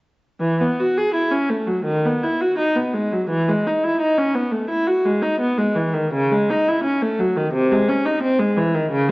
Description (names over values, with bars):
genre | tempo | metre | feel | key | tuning
classical, baroque-style suite movement for unaccompanied viola | 85 BPM | 4/4 | rubato | E major | A4 = 440 Hz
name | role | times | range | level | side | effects
warm viola | solo | 0.4-9.1 s | B#2 to G#4 | -17 LUFS | equal | none
room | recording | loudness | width
wet recital hall reverb, RT60 1.5 s | worn, warbling old tape, cassette tape, warbly pitch drift, nothing above 7.8 kHz | -17 LUFS | side -23 dB against mid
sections
0.4-9.1 A section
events
none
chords
none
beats
| 0.40 1.14 1.85 2.57 | 3.29 3.99 4.69 5.40 | 6.12 6.83 7.53 8.22 | 8.90